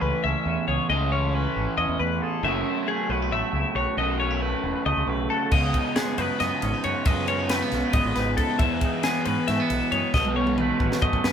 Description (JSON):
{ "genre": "math rock and midwest emo", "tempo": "272 BPM (eighths)", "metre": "7/8", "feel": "straight", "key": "A lydian", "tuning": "A4 = 440 Hz", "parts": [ { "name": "twangy electric guitar", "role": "accompaniment", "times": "0.0-11.3 s", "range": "E2 to G#4", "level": "-30 LUFS", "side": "right 7 dB", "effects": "none" }, { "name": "twelve-string electric guitar", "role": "arpeggios", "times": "0.0-11.3 s", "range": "G#4 to E5", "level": "-27 LUFS", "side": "left 4 dB", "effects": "none" }, { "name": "crunchy overdriven guitar", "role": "riff", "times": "0.0-11.3 s", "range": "A2 to A4", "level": "-28 LUFS", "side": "equal", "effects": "phaser" }, { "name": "growling fingered electric bass", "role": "bass", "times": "0.0-11.3 s", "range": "E1 to G#2", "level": "-29 LUFS", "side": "equal", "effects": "overdrive" }, { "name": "crisp fusion drum kit", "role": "drums", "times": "5.5-11.3 s", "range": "crash cymbal, kick drum, ride cymbal, snare drum, toms", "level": "-27 LUFS", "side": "equal", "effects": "none" } ], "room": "light reverb", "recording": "band playing live in one room", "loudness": "-22 LUFS", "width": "side -8 dB against mid", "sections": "0.0-11.3 A section", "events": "drum fill 10.1-11.3", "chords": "0.0 Amaj9#11; 2.4 F#m11; 5.5 C#9sus4; 8.6 Emaj7; 10.1 B9", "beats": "0.02 0.24 0.46 0.68 | 0.90 1.12 1.34 1.56 1.78 2.00 2.22 | 2.44 2.66 2.88 3.10 3.32 3.54 3.76 | 3.98 4.20 4.42 4.64 4.86 5.08 5.30 | 5.52 5.74 5.96 6.18 6.40 6.62 6.84 | 7.06 7.29 7.50 7.73 7.95 8.17 8.39 | 8.61 8.83 9.05 9.27 9.49 9.71 9.93 | 10.15 10.37 10.59 10.81 11.03 11.25" }